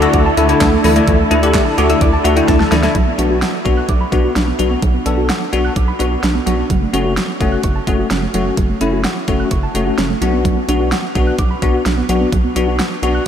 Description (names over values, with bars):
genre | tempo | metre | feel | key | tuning
synth-pop | 128 BPM | 4/4 | straight | B minor | A4 = 441 Hz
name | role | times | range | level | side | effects
bell-like tine electric piano | accompaniment | 0.0-13.2 s | A3 to A5 | -17 LUFS | left 4 dB | ensemble chorus
warm analog pad | sustained chords | 0.0-2.9 s | D3 to A4 | -20 LUFS | equal | chorus
soft round pluck | arpeggios | 0.0-13.2 s | E3 to F#6 | -21 LUFS | right 3 dB | chorus, ping-pong delay
rubbery square bass | bass | 0.0-13.2 s | F#1 to D2 | -19 LUFS | right 1 dB | none
pop drum kit | drums | 0.0-13.1 s | handclaps, hi-hat, kick drum, snare drum | -19 LUFS | right 1 dB | overdrive
room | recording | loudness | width
moderate huge ambient reverb, RT60 7.3 s | dreamy mix soaked in reverb | -13 LUFS | side -8 dB against mid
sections
0.0-3.0 A section; 3.0-13.3 B section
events
tine electric piano fill 2.0-3.0; drum fill 2.5-3.0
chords
0.0 Dsus2; 3.0 Bm; 6.7 F#m; 10.2 Bm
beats
0.14 0.61 | 1.08 1.54 2.01 2.48 | 2.95 3.42 3.89 4.36 | 4.83 5.29 5.76 6.23 | 6.70 7.17 7.64 8.11 | 8.58 9.04 9.51 9.98 | 10.45 10.92 11.39 11.86 | 12.33 12.79